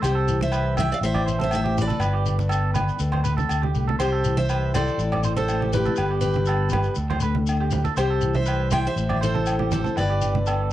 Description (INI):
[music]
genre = highlife guitar band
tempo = 121 BPM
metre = 4/4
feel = straight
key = C major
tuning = A4 = 440 Hz
[part]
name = picked steel-string acoustic guitar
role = melody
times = 0.0-10.7 s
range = G4 to G5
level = -26 LUFS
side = equal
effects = cassette tape
[part]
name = fingerpicked steel-string acoustic guitar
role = accompaniment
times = 0.0-10.7 s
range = G2 to G4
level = -30 LUFS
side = left 6 dB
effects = cassette tape
[part]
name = electric guitar at the edge of break-up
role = arpeggios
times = 0.0-10.7 s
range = G4 to E5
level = -30 LUFS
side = right 7 dB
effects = cassette tape, tape echo
[part]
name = fingered electric bass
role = bass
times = 0.0-10.7 s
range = G1 to D2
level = -24 LUFS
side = equal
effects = none
[part]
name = agogo bells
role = percussion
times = 0.0-10.6 s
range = none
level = -32 LUFS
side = left 2 dB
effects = none
[part]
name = shekere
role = percussion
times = 0.0-10.6 s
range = none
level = -32 LUFS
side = left 4 dB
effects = none
[part]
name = congas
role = percussion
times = 0.4-10.5 s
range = none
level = -30 LUFS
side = right 5 dB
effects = none
[sound]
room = moderate booth ambience, RT60 0.2 s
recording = home recording on cassette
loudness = -20 LUFS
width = side -13 dB against mid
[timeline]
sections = 0.0-10.7 A section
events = none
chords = 0.0 C; 1.0 Am; 2.0 G; 3.0 D5; 4.0 C; 5.0 Am; 6.0 G; 7.0 D5; 8.0 C; 9.0 Am; 10.0 G